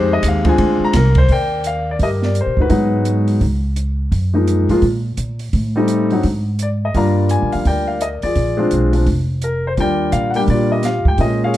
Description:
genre	jazz piano trio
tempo	170 BPM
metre	4/4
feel	swing 62% on 8ths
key	Eb major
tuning	A4 = 440 Hz
part	warm grand piano	melody	0.0-11.6 s	F3 to Bb5	-17 LUFS	left 1 dB	plate reverb
part	upright bass	bass	0.0-11.6 s	F1 to Bb2	-18 LUFS	equal	none
part	open jazz drum kit	drums	0.2-11.6 s	hi-hat, kick drum, ride cymbal, snare drum	-20 LUFS	right 1 dB	none
room	light reverb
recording	dark, warm production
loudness	-14 LUFS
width	side -14 dB against mid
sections	0.0-1.3 A section; 1.3-11.6 B section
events	grand piano solo 0.0-1.3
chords	0.0 Fm7; 0.6 Bb9; 1.3 Ebmaj7; 2.7 Abm7; 3.4 N.C.; 4.1 Gbmaj13; 5.5 Am7b5; 6.2 Ab5; 6.9 Gm7; 8.4 Bb7; 9.8 Ebmaj9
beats	0.23 0.59 0.94 | 1.29 1.64 2.00 2.35 | 2.70 3.06 3.41 3.76 | 4.12 4.47 4.82 5.17 | 5.53 5.88 6.24 6.59 | 6.94 7.30 7.65 8.00 | 8.36 8.71 9.07 9.42 | 9.77 10.13 10.48 10.84 | 11.19 11.54

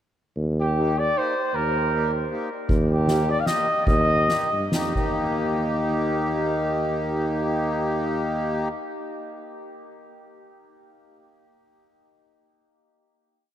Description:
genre	alpine folk, alpine dance band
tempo	129-156 BPM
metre	3/4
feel	straight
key	Eb major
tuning	A4 = 438 Hz
part	mellow tuba	bass	0.4-8.7 s	Eb2 to G2	-25 LUFS	equal	none
part	mellow trumpet	melody	0.6-4.7 s	G4 to F5	-24 LUFS	equal	none
part	accordion	accompaniment	0.8-8.7 s	Bb3 to G4	-27 LUFS	left 1 dB	none
part	soft-mallet drum kit	drums	2.7-5.1 s	crash cymbal, kick drum, ride cymbal, snare drum	-27 LUFS	equal	none
room	wet cathedral reverb, RT60 6.2 s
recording	in a vast, echoing space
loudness	-21 LUFS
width	side -11 dB against mid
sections	0.4-5.2 A section; 5.2-7.9 final hit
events	slowing down 2.7-5.2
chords	0.4 Eb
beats	| 0.37 0.76 1.15 | 1.54 1.93 2.31 | 2.70 3.08 3.48 | 3.88 4.30 4.73 | 5.18 5.64 6.09 | 6.55 7.01 7.47

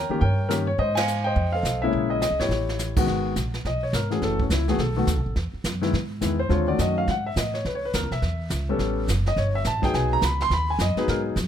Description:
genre	jazz piano trio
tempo	210 BPM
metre	4/4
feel	swing 62% on 8ths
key	G# minor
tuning	A4 = 440 Hz
part	warm grand piano	melody	0.0-11.3 s	C#3 to B#5	-24 LUFS	left 2 dB	plate reverb
part	upright bass	bass	0.0-11.5 s	F#1 to A2	-26 LUFS	right 1 dB	none
part	jazz brush drum kit	drums	0.2-11.5 s	brushed snare drum, crash cymbal, hi-hat, kick drum, ride cymbal, snare drum	-30 LUFS	right 2 dB	none
room	light reverb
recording	close, detailed microphones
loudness	-22 LUFS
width	side -9 dB against mid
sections	0.0-3.1 A section; 3.1-11.5 B section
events	band accent 0.9; drum fill 2.5; grand piano solo 3.1-11.5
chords	0.0 D#7; 0.8 G#6; 1.4 F7; 1.9 A#m7b5; 2.5 A7; 3.1 G#m7; 4.2 F#m7; 4.8 B7; 5.4 Emaj7; 6.5 D#m7b5; 7.1 F#m69/G#; 7.6 C#m7; 8.8 A9; 9.9 G#m7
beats	0.21 0.49 | 0.78 1.06 1.35 1.64 | 1.92 2.21 2.50 2.78 | 3.07 3.35 3.64 3.93 | 4.21 4.50 4.79 5.07 | 5.36 5.64 5.93 6.22 | 6.50 6.79 7.08 7.36 | 7.65 7.93 8.22 8.50 | 8.79 9.08 9.36 9.65 | 9.93 10.22 10.51 10.79 | 11.08 11.36

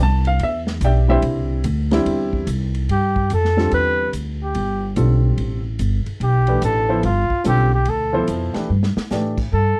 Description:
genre	modal jazz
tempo	145 BPM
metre	4/4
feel	swing 65% on 8ths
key	G mixolydian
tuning	A4 = 440 Hz
part	warm baby grand piano	accompaniment	0.0-9.4 s	B2 to A5	-24 LUFS	equal	none
part	upright bass	bass	0.0-9.8 s	G1 to A2	-22 LUFS	equal	none
part	vintage drum kit	drums	0.2-9.4 s	crash cymbal, hi-hat, kick drum, ride cymbal, snare drum	-33 LUFS	equal	none
part	dark trumpet	melody	2.9-9.8 s	F4 to B4	-23 LUFS	equal	none
room	little or no reverb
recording	dry, close 1970s-style studio recording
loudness	-19 LUFS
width	mono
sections	0.0-2.9 A section; 2.9-9.8 B section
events	drum fill 8.7-9.1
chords	0.0 Cadd9; 2.9 G9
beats	0.40 0.82 | 1.23 1.65 2.06 2.48 | 2.89 3.31 3.72 4.13 | 4.55 4.96 5.38 5.79 | 6.21 6.62 7.04 7.45 | 7.87 8.28 8.70 9.11 | 9.52

